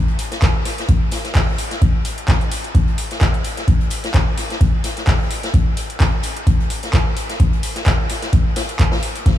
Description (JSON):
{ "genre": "house", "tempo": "129 BPM", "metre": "4/4", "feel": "swing 55% on 16ths", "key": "none", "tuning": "none", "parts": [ { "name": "swinging big-band drum kit", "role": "drums", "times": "0.1-9.4 s", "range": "hi-hat, snare drum", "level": "-28 LUFS", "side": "left 2 dB", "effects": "high-pass filter on hats, high-pass filter on snare, high-pass filter on room" }, { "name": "booming analog drum machine", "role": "drums", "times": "0.2-9.4 s", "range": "handclaps, hi-hat", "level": "-24 LUFS", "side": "equal", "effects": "none" }, { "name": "electronic kick drum", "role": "drums", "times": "0.4-9.4 s", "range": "none", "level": "-15 LUFS", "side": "equal", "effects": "none" } ], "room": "light reverb", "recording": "small room ambience", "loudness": "-16 LUFS", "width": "side -12 dB against mid", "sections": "0.0-9.4 A section", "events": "none", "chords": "none" }